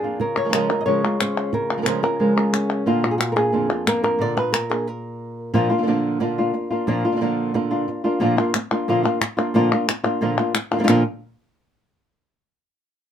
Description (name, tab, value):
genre	flamenco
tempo	180 BPM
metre	4/4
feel	straight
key	unclear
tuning	A4 = 440 Hz
part	flamenco guitar	melody	0.0-11.0 s	F2 to Eb5	-20 LUFS	left 1 dB	none
part	flamenco guitar	stabs	0.0-11.0 s	Bb2 to Bb4	-24 LUFS	right 4 dB	none
part	palmas hand claps	percussion	0.4-4.9, 8.4-11.0 s	none	-24 LUFS	left 4 dB	none
room	moderate small room ambience, RT60 0.5 s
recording	minimal, uncompressed stereo recording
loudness	-18 LUFS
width	side -9 dB against mid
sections	0.0-5.5 A section; 5.5-10.9 B section; 10.9-12.2 C section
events	stop 4.9-5.5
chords	0.2 Db6; 2.9 Bb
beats	| 0.20 0.53 0.87 1.20 | 1.53 1.87 2.20 2.54 | 2.87 3.20 3.54 3.87 | 4.20 4.54 4.87 5.21 | 5.54 5.87 6.21 6.54 | 6.88 7.21 7.54 7.88 | 8.21 8.55 8.88 9.21 | 9.55 9.88 10.22 10.55 | 10.89